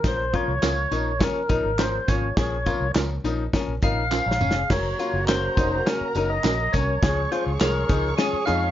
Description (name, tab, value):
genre	uptempo 1960s-style soul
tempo	103 BPM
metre	4/4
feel	straight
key	unclear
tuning	A4 = 442 Hz
part	percussive tonewheel organ	melody	0.0-8.7 s	Ab4 to F5	-26 LUFS	equal	overdrive, slow rotary speaker
part	bright upright piano	accompaniment	0.0-8.6 s	F3 to Bb5	-30 LUFS	left 5 dB	none
part	vintage muted fingered electric bass	bass	0.0-8.7 s	F1 to F2	-27 LUFS	equal	none
part	natural country drum kit	drums	0.0-8.6 s	crash cymbal, hi-hat, kick drum, snare drum, toms	-25 LUFS	equal	none
part	tambourine and handclaps	percussion	0.0-8.6 s	none	-37 LUFS	right 3 dB	none
part	archtop guitar, miked and amplified	riff	0.3-8.7 s	Db4 to F4	-31 LUFS	left 6 dB	none
part	mellow electric guitar	stabs	0.6-7.7 s	Db4 to Db5	-29 LUFS	right 8 dB	tremolo
part	dark saxophone section	second line	4.7-8.7 s	Db3 to Ab4	-34 LUFS	right 1 dB	none
part	dark symphonic violin section	second line	4.7-8.7 s	Bb4 to Db6	-34 LUFS	right 2 dB	none
room	moderate club reverb, RT60 0.5 s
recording	dark, warm production, nothing above 7.5 kHz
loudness	-21 LUFS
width	side -12 dB against mid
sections	0.0-4.7 A section; 4.7-8.7 B section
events	drum fill 4.1-4.7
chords	0.0 Bbm; 4.7 Gb; 7.0 Db